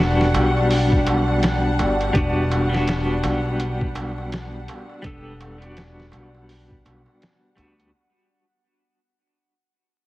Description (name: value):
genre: trip hop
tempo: 83 BPM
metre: 4/4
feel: swing 60% on 16ths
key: E minor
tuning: A4 = 440 Hz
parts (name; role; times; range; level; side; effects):
- clean electric guitar; accompaniment; 0.0-7.9 s; G3 to A4; -24 LUFS; left 1 dB; tremolo, low-pass filter, tape echo
- dark studio violin section; sustained chords; 0.0-7.9 s; G3 to F#5; -26 LUFS; left 1 dB; none
- upright bass; bass; 0.0-7.9 s; E1 to D2; -23 LUFS; equal; tube saturation
- bowed-like drone; texture; 0.1-7.9 s; F#5; -35 LUFS; equal; none
- trip hop sampler-style drum kit; drums; 0.2-7.9 s; hi-hat, kick drum, snare drum; -24 LUFS; equal; vintage 12-bit sampler grit
- darbuka; percussion; 0.3-7.9 s; none; -32 LUFS; right 3 dB; none
room: light reverb, small room reverb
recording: heavily compressed radio sound, multiband compression, vinyl crackle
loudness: -18 LUFS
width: side -17 dB against mid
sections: 0.0-7.9 A section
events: fade-out 0.0-7.9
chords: 0.0 Em9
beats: 0.70 1.43 | 2.15 2.87 3.60 4.32 | 5.04 5.76 6.49 7.21